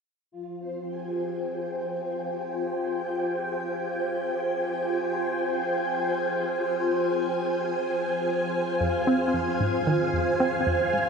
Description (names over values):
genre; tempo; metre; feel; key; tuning
ambient, sequencer-driven space music; free time; none; none; F minor; A4 = 440 Hz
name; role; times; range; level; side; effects
string machine, full ensemble; sustained chords; 0.3-11.1 s; F4 to Ab5; -25 LUFS; equal; phaser, ensemble chorus
analog pluck; riff; 8.8-11.0 s; F2 to C4; -26 LUFS; equal; chorus, ping-pong delay
room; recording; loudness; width
wet cathedral reverb, RT60 5.2 s; in a vast, echoing space; -25 LUFS; side -5 dB against mid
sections
0.3-11.1 A section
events
filter sweep on string machine 0.3-11.1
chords
0.3 Fm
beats
free time